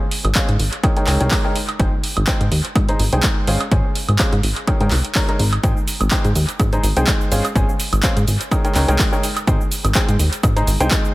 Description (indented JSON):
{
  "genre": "piano house",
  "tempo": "125 BPM",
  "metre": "4/4",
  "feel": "swing 54% on 16ths",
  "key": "Ab major",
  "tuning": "A4 = 440 Hz",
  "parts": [
    { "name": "punchy analog drum machine", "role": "drums", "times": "0.1-11.1 s", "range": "cabasa, handclaps, hi-hat, woodblock", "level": "-23 LUFS", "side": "right 1 dB", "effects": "overdrive, analog delay" },
    { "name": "plucky analog bass", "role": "bass", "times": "0.2-10.9 s", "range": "Ab1 to Ab2", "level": "-18 LUFS", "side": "equal", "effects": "sidechain pumping" },
    { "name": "bright grand piano", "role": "riff", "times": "0.4-11.1 s", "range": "Ab3 to Bb5", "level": "-23 LUFS", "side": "equal", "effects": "sidechain pumping, low-pass filter, analog delay" },
    { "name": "electronic kick drum", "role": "drums", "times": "0.4-11.0 s", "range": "none", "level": "-19 LUFS", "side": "equal", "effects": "overdrive" }
  ],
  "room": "little or no reverb",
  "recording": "echo-heavy mix",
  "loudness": "-15 LUFS",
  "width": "side -19 dB against mid",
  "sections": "0.0-11.1 A section",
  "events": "none",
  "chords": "0.0 Dbmaj7/Ab; 0.6 Eb7/Ab; 1.8 Abmaj7; 3.5 Dbmaj7/Ab; 4.4 Eb7/Ab; 5.6 Abmaj7; 7.3 Dbmaj7/Ab; 8.3 Eb7/Ab; 9.5 Abmaj7"
}